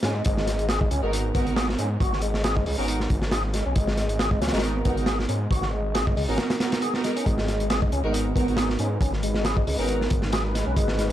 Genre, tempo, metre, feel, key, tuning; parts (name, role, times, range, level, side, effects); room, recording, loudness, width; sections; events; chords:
breakbeat, breaks; 137 BPM; 4/4; swing 54% on 16ths; G# minor; A4 = 440 Hz
tonewheel organ; riff; 0.0-11.1 s; G#3 to G#4; -29 LUFS; equal; overdrive, fast rotary speaker, low-pass filter, dub echo
detuned saw bass; bass; 0.0-11.1 s; G#1 to G#2; -27 LUFS; equal; tube saturation
crunchy breakbeat drum kit; drums; 0.0-11.1 s; hi-hat, kick drum, snare drum; -26 LUFS; equal
dark chamber string section; stabs; 1.0-9.9 s; B3 to A#4; -30 LUFS; right 4 dB; dub echo
phased analog pad; sustained chords; 7.3-11.1 s; G#3 to B4; -33 LUFS; left 1 dB; phaser, chorus, sidechain pumping
small room ambience; dark, warm production; -22 LUFS; side -12 dB against mid
0.0-11.1 A section
0.0 G#m9